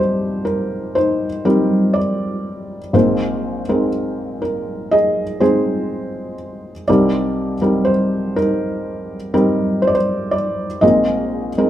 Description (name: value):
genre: acoustic folk-pop ballad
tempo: 61 BPM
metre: 4/4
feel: straight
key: C minor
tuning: A4 = 440 Hz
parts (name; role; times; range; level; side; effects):
- felt-muted upright piano; solo; 0.0-11.7 s; Bb1 to Eb5; -16 LUFS; equal; none
room: light reverb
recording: band playing live in one room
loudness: -15 LUFS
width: side -12 dB against mid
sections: 0.0-11.7 A section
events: none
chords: 0.0 Cm7; 2.9 Bb9sus4; 6.9 Cm7; 10.8 Bb9sus4